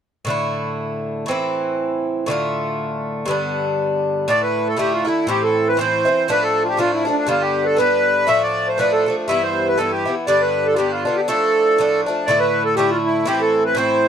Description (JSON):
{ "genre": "celtic folk", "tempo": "120 BPM", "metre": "2/4", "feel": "swing 56% on 8ths", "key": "D dorian", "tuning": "A4 = 441 Hz", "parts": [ { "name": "Irish bouzouki", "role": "accompaniment", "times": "0.2-14.1 s", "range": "G2 to F4", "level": "-20 LUFS", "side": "equal", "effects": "none" }, { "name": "accordion", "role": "melody", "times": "4.3-14.1 s", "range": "D4 to E5", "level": "-17 LUFS", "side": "right 1 dB", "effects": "none" } ], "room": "light reverb", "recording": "dark, warm production", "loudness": "-16 LUFS", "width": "side -8 dB against mid", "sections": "0.3-4.3 A section; 4.3-12.3 B section; 12.3-14.1 B section", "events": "none", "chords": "0.3 Dsus2; 1.3 Am; 2.3 Dm; 3.3 G; 4.3 Dsus2; 5.3 Am; 6.3 Dm; 7.3 G; 8.3 Dm; 9.3 Em; 10.3 G; 11.3 Dm; 12.3 Dsus2; 13.3 Am", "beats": "| 0.26 0.76 | 1.27 1.77 | 2.27 2.77 | 3.27 3.77 | 4.28 4.78 | 5.28 5.78 | 6.28 6.78 | 7.28 7.78 | 8.28 8.78 | 9.28 9.77 | 10.27 10.77 | 11.27 11.77 | 12.26 12.76 | 13.26 13.76" }